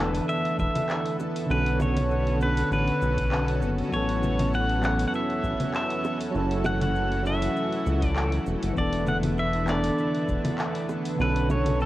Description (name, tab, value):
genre	sunset chillout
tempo	99 BPM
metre	4/4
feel	swing 54% on 16ths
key	A major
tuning	A4 = 440 Hz
part	pedal steel guitar	melody	0.0-11.9 s	B4 to F#5	-30 LUFS	equal	cassette tape, analog delay, shimmer reverb
part	tine electric piano	accompaniment	0.0-11.9 s	D3 to B4	-29 LUFS	moving between left 3 dB and right 4 dB	auto-pan, cassette tape, shimmer reverb
part	lush unison pad	sustained chords	0.0-11.9 s	D3 to A4	-31 LUFS	equal	chorus, cassette tape, shimmer reverb
part	round analog bass	bass	0.0-11.9 s	E1 to C#2	-27 LUFS	equal	none
part	deep house drum kit	drums	0.1-11.9 s	cabasa, congas, handclaps, hi-hat	-32 LUFS	left 1 dB	cassette tape
part	electronic kick drum	drums	0.6-10.4 s	none	-31 LUFS	equal	cassette tape
part	bongos	percussion	1.2-1.9, 6.0-6.8, 10.9-11.6 s	none	-34 LUFS	right 2 dB	none
room	light reverb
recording	home recording on cassette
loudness	-23 LUFS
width	side -15 dB against mid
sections	0.0-11.9 A section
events	none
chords	0.0 E7sus4; 1.5 Bm9; 3.9 A69; 6.3 F#m7; 8.8 E7sus4; 11.2 Bm9